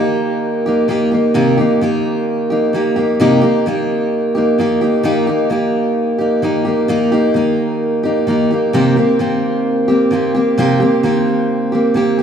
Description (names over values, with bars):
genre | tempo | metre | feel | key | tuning
rock | 130 BPM | 4/4 | straight | C minor | A4 = 440 Hz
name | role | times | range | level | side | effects
picked steel-string acoustic guitar | solo | 0.0-12.2 s | C3 to G4 | -13 LUFS | equal | analog delay
room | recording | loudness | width
moderate plate reverb, RT60 3.2 s | rough home demo mix, small room reverb | -13 LUFS | side -8 dB against mid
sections
0.0-12.2 A section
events
none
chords
0.0 Eb; 1.4 Cm7; 5.0 Eb; 8.7 Cm7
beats
0.43 0.89 | 1.35 1.81 2.28 2.74 | 3.20 3.66 4.13 4.59 | 5.05 5.51 5.97 6.43 | 6.89 7.36 7.82 8.28 | 8.74 9.20 9.66 10.12 | 10.58 11.04 11.50 11.96